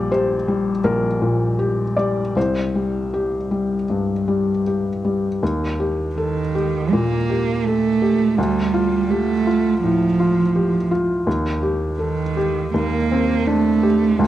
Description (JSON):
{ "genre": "neoclassical piano and strings", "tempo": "81 BPM", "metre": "4/4", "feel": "uneven beats, rubato", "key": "C dorian", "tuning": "A4 = 440 Hz", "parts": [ { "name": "felt-muted upright piano", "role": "accompaniment", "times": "0.0-14.3 s", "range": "Bb1 to D5", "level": "-19 LUFS", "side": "left 2 dB", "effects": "none" }, { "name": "warm cello", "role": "second line", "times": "6.2-14.3 s", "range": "Eb3 to Bb3", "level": "-19 LUFS", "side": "right 5 dB", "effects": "none" } ], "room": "moderate recital hall reverb, RT60 1.7 s", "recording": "worn, warbling old tape, cassette tape, warbly pitch drift", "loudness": "-17 LUFS", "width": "side -13 dB against mid", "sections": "0.0-5.4 A section; 5.4-14.3 B section", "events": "none", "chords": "0.0 Gm/Bb; 2.4 C5; 5.4 Eb; 8.4 Dm; 11.3 Cm7/Eb", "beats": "0.12 0.85 1.60 | 2.36 3.13 3.89 4.65 | 5.41 6.16 6.92 7.65 | 8.38 9.10 9.83 10.55 | 11.27 11.99 12.75 13.48 | 14.20" }